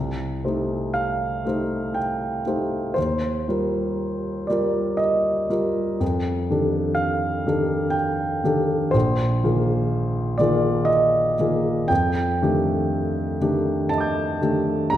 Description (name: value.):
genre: classical, impressionist solo piano.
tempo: 60 BPM.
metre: 3/4.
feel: uneven beats, rubato.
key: unclear.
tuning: A4 = 442 Hz.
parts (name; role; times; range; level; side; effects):
clear grand piano; solo; 0.0-15.0 s; Bb1 to G6; -20 LUFS; equal; none.
room: wet recital hall reverb, RT60 1.4 s.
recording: none.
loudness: -20 LUFS.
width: side -12 dB against mid.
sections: 0.0-15.0 A section.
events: none.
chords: 0.0 Cm6; 3.0 Ebadd9; 6.0 F13; 8.9 Bb9sus4; 11.9 F13.